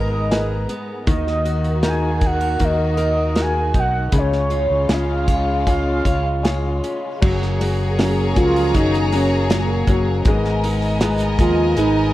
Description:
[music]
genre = pop ballad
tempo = 79 BPM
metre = 4/4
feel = straight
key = F# major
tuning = A4 = 443 Hz
[part]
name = warm velvety synth lead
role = melody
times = 0.0-12.1 s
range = A#3 to G#5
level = -21 LUFS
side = right 1 dB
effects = chorus
[part]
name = clear grand piano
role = accompaniment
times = 0.0-12.1 s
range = C#3 to B4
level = -25 LUFS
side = left 3 dB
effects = none
[part]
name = warm symphonic string section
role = sustained chords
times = 0.0-12.1 s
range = C#3 to A#5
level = -28 LUFS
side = left 1 dB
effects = none
[part]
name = picked steel-string acoustic guitar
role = arpeggios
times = 0.0-12.1 s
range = G#2 to C#5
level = -28 LUFS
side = right 2 dB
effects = none
[part]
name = fingered electric bass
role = bass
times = 0.0-12.1 s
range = F#1 to D#2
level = -21 LUFS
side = equal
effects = none
[part]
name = natural country drum kit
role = drums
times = 0.3-11.9 s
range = crash cymbal, hi-hat, kick drum, snare drum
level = -20 LUFS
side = equal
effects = none
[part]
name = warm studio violin section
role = second line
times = 7.2-12.1 s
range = A#3 to D#5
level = -26 LUFS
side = left 1 dB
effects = none
[sound]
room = small room ambience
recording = worn, warbling old tape, cassette tape, warbly pitch drift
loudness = -16 LUFS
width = side -15 dB against mid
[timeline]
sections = 0.0-7.2 A section; 7.2-12.1 B section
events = none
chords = 0.0 G#madd9; 1.1 D#m; 4.1 C#; 7.2 F#add9; 10.3 G#madd9

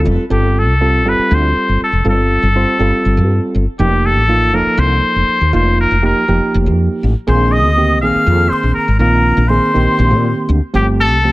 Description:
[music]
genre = jazz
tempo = 242 BPM (eighths)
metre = 7/8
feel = straight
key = unclear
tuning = A4 = 439 Hz
[part]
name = overdriven reed electric piano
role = accompaniment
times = 0.0-11.3 s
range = Eb3 to C5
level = -17 LUFS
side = right 2 dB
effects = none
[part]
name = woody fretless electric bass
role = bass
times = 0.0-11.3 s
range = F1 to Bb2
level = -14 LUFS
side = equal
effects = ensemble chorus
[part]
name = trumpet with straight mute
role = melody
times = 0.3-11.3 s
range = G4 to F5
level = -16 LUFS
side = left 1 dB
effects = none
[part]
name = reedy silver concert flute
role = second line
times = 7.3-11.3 s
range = G5 to F6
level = -20 LUFS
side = left 2 dB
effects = plate reverb
[sound]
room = light reverb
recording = none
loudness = -11 LUFS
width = side -18 dB against mid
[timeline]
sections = 0.3-11.3 A section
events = none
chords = 0.3 G9sus4; 3.8 F9sus4; 7.3 Bb9sus4; 10.7 G9sus4

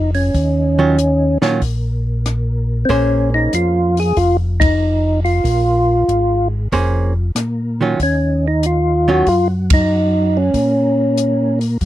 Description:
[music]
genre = soul jazz organ trio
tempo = 94 BPM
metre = 4/4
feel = swing 69% on 8ths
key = unclear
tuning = A4 = 440 Hz
[part]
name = percussive tonewheel organ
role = melody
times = 0.0-11.6 s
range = C4 to Ab4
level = -16 LUFS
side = equal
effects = slow rotary speaker, chorus vibrato
[part]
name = tonewheel organ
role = bass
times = 0.0-11.9 s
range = F1 to Bb2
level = -17 LUFS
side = equal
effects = chorus vibrato, slow rotary speaker
[part]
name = compact cocktail drum kit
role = drums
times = 0.1-11.9 s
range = hi-hat, kick drum, ride cymbal, rim click, snare drum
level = -20 LUFS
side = equal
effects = none
[part]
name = archtop guitar, miked and amplified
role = accompaniment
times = 0.8-9.3 s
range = Eb3 to C5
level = -19 LUFS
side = right 4 dB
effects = none
[sound]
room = little or no reverb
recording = dry, close 1970s-style studio recording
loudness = -13 LUFS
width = side -14 dB against mid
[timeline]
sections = 0.0-11.9 A section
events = band accent 4.5-4.8, 9.6-9.9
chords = 0.3 Ebm9; 2.9 Bbm9; 8.0 Ebm9

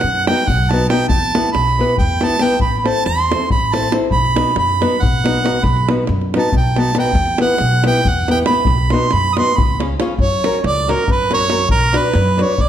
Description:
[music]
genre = balkan folk, Balkan wedding band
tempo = 277 BPM (eighths)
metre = 7/8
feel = straight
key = B phrygian dominant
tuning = A4 = 440 Hz
[part]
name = clear harmonica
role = melody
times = 0.0-12.7 s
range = A#4 to D#6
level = -18 LUFS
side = right 3 dB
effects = none
[part]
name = upright bass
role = bass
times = 0.0-12.7 s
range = A1 to F#2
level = -19 LUFS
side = equal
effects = none
[part]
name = davul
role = percussion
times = 0.0-12.7 s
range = none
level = -20 LUFS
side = equal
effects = none
[part]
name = flamenco guitar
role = accompaniment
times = 0.3-12.5 s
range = B3 to D5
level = -20 LUFS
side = left 2 dB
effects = none
[part]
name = mellow accordion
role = second line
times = 10.2-12.7 s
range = A#4 to D5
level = -22 LUFS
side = equal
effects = none
[sound]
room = moderate recital hall reverb, RT60 1.3 s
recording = none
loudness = -13 LUFS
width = side -10 dB against mid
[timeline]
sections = 0.0-10.2 A section; 10.2-12.7 B section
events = harmonica solo 0.0-10.2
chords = 0.0 B; 1.1 Em; 2.6 Am; 4.1 B; 7.2 Em; 8.7 B; 9.5 C#; 10.2 F#; 11.7 Bm

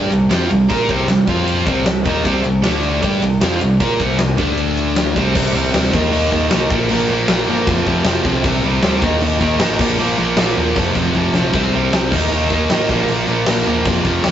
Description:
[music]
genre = hard rock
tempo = 155 BPM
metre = 4/4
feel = straight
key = C dorian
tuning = A4 = 440 Hz
[part]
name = overdriven electric guitar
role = riff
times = 0.0-14.3 s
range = F2 to Bb4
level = -18 LUFS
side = right 3 dB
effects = none
[part]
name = sludgy distorted guitar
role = riff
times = 0.0-14.3 s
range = F2 to Bb4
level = -20 LUFS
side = left 3 dB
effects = overdrive
[part]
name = overdriven picked electric bass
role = bass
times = 0.0-14.3 s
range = F1 to Bb2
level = -24 LUFS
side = equal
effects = none
[part]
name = huge arena drum kit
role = drums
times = 0.0-14.3 s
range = crash cymbal, kick drum, ride cymbal, snare drum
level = -20 LUFS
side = left 1 dB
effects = none
[sound]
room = wet stone room reverb, RT60 1.4 s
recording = rough rehearsal-room recording, nothing above 7.8 kHz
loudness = -14 LUFS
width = side -10 dB against mid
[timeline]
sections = 0.0-5.4 A section; 5.4-14.3 B section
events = drum fill 11.2-11.5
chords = 0.0 C5; 1.3 F5; 1.7 Cm; 2.6 D5; 3.0 C5; 4.4 D5; 5.2 C5; 5.9 Eb5; 6.7 Bb5; 7.7 F5; 8.4 C5; 9.0 Eb5; 9.8 Bb5; 10.8 F5; 11.5 C5; 12.1 Eb5; 12.9 Bb5

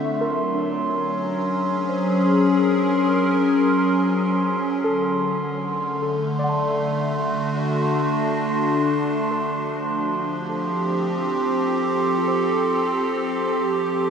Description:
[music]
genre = ambient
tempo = free time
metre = none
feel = none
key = unclear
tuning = A4 = 440 Hz
[part]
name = evolving wavetable pad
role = sustained chords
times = 0.0-14.1 s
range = D3 to Bb4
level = -20 LUFS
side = left 1 dB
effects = chorus, built-in reverb, shimmer reverb
[part]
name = muted felt-like synth keys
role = arpeggios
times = 0.0-14.1 s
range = D4 to A5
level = -30 LUFS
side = equal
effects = chorus, analog delay, shimmer reverb
[part]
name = glass harmonica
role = texture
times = 0.1-14.1 s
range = C6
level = -28 LUFS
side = right 3 dB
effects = shimmer reverb
[sound]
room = wet plate reverb, RT60 3.5 s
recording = dreamy mix soaked in reverb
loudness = -19 LUFS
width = side -7 dB against mid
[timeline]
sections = 0.1-14.1 A section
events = fade-out on synth keys 0.1-14.1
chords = 0.1 Gb; 4.8 D; 9.5 F

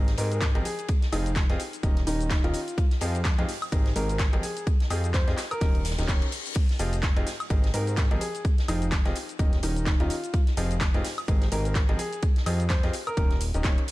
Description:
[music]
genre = piano house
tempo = 127 BPM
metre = 4/4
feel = swing 57% on 16ths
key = F minor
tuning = A4 = 437 Hz
[part]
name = clear upright piano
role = riff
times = 0.0-13.8 s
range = Ab2 to Eb5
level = -34 LUFS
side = left 1 dB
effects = sidechain pumping, ping-pong delay
[part]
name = fat analog bass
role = bass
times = 0.0-13.8 s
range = Eb1 to Ab2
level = -28 LUFS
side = equal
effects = sidechain pumping
[part]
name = big rock drum kit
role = drums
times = 0.1-13.9 s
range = hi-hat, ride cymbal, snare drum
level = -41 LUFS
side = left 1 dB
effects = high-pass filter on cymbals, high-pass filter on hats, high-pass filter on snare, high-pass filter on room
[part]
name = house drum kit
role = drums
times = 0.1-13.9 s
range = crash cymbal, handclaps, hi-hat, shaker, woodblock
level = -34 LUFS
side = equal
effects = overdrive
[part]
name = warm grand piano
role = melody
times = 0.2-13.4 s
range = Eb4 to C5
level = -34 LUFS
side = equal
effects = ping-pong delay
[part]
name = electronic kick drum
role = drums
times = 0.4-13.8 s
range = none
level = -24 LUFS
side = equal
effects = overdrive
[part]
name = reverse cymbal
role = sound effects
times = 5.8-6.6 s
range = none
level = -37 LUFS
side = left 7 dB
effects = none
[sound]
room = small room ambience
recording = dark, warm production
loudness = -23 LUFS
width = side -18 dB against mid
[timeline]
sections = 0.0-13.9 A section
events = reverse cymbal 5.8-6.6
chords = 0.0 Abmaj9; 0.7 Fm9; 1.6 Eb7; 2.8 Fm9; 3.5 Abmaj9; 4.4 Fm9; 5.4 Eb7; 6.6 Fm9; 7.3 Abmaj9; 8.2 Fm9; 9.2 Eb7; 10.3 Fm9; 11.0 Abmaj9; 12.0 Fm9; 12.9 Eb7

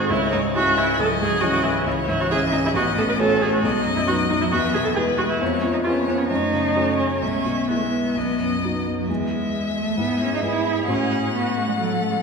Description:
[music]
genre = quick classical-period movement for piano quartet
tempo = 134 BPM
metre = 4/4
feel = rubato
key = E major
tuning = A4 = 435 Hz
[part]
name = clear violin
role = melody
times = 0.0-12.2 s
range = B4 to F#5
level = -27 LUFS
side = left 5 dB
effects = none
[part]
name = rich cello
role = second line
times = 0.0-12.2 s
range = E3 to E4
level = -26 LUFS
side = right 3 dB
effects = none
[part]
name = clear grand piano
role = accompaniment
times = 0.0-12.2 s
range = A1 to C#5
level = -24 LUFS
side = left 1 dB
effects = none
[part]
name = rich viola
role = accompaniment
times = 0.0-12.2 s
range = A3 to B4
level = -23 LUFS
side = right 2 dB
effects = none
[sound]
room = wet concert hall reverb, RT60 2.3 s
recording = minimal, uncompressed stereo recording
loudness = -19 LUFS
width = side -5 dB against mid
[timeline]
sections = 0.0-9.1 A section; 9.1-12.2 B section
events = none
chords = 0.1 C#m; 2.7 F#m/A; 3.6 B; 4.5 E; 5.4 C#7/E#; 6.3 F#m; 7.2 E/B; 8.2 B; 9.1 E; 10.0 E/G#; 10.9 F#m/A

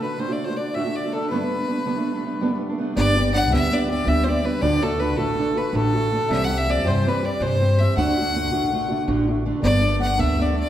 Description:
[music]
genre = celtic folk, Celtic slip jig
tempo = 108 BPM (dotted quarters)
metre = 9/8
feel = straight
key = G major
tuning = A4 = 444 Hz
[part]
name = clear fiddle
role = melody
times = 0.0-10.7 s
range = A4 to F#5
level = -26 LUFS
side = left 1 dB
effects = none
[part]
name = mellow accordion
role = second line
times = 0.0-10.7 s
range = A4 to F#5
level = -28 LUFS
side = left 4 dB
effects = none
[part]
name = fingerpicked steel-string acoustic guitar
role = accompaniment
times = 0.0-10.7 s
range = D2 to G4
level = -23 LUFS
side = right 3 dB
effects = none
[part]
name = upright bass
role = bass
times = 3.0-10.6 s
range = G1 to G2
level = -23 LUFS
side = left 1 dB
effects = none
[sound]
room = wet recital hall reverb, RT60 1.6 s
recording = heard from further back in the room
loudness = -19 LUFS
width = side -11 dB against mid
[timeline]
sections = 0.0-3.0 A section; 3.0-10.7 B section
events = none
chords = 0.0 D; 1.3 Gadd9; 3.0 G; 4.6 D; 6.3 C; 8.0 D; 9.6 Gadd9

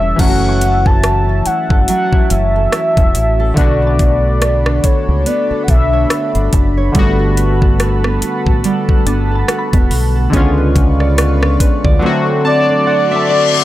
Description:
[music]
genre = contemporary R&B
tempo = 71 BPM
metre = 4/4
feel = swing 58% on 16ths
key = unclear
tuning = A4 = 440 Hz
[part]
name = mellow horn-like synth lead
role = melody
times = 0.0-6.5, 12.5-13.6 s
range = C#5 to A5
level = -16 LUFS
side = left 1 dB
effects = chorus
[part]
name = warm analog keys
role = accompaniment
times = 0.0-13.6 s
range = D3 to A5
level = -18 LUFS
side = left 2 dB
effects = chorus
[part]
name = chorused pulse-width pad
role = sustained chords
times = 0.0-13.6 s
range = G3 to C#6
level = -22 LUFS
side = left 2 dB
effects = none
[part]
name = nylon-string guitar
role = arpeggios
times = 0.0-13.6 s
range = A2 to D5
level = -22 LUFS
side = right 6 dB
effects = tape echo
[part]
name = deep dub fingered electric bass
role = bass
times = 0.0-12.0 s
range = E1 to D2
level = -15 LUFS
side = equal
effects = none
[part]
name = trap drum kit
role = drums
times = 0.2-12.0 s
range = crash cymbal, hi-hat, kick drum, rim click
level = -14 LUFS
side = equal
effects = none
[part]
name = glassy wavetable pluck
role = texture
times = 0.2-13.6 s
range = D4 to E6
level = -29 LUFS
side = left 3 dB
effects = chorus, tape echo
[part]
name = reverse cymbal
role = sound effects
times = 13.0-13.6 s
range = none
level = -20 LUFS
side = left 9 dB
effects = none
[sound]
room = little or no reverb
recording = none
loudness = -11 LUFS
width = side -15 dB against mid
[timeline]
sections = 0.2-13.6 A section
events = break 0.0; synth keys fill 12.0-13.6; reverse cymbal 13.0-13.6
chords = 0.2 F#m7; 3.6 Bm9; 7.0 Gmaj9; 10.3 C#7b9; 12.0 D7

